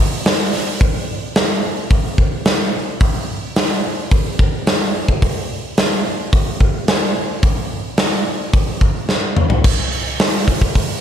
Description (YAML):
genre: rock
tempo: 109 BPM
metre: 4/4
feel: straight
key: none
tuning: none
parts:
  - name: big rock drum kit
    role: drums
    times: 0.3-10.9 s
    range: crash cymbal, hi-hat, kick drum, snare drum, toms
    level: -15 LUFS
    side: equal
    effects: none
room: moderate concert hall reverb, RT60 2.2 s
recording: none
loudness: -15 LUFS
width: side -9 dB against mid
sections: 0.8-9.7 A section; 9.7-11.0 B section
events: drum fill 9.1-9.7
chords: none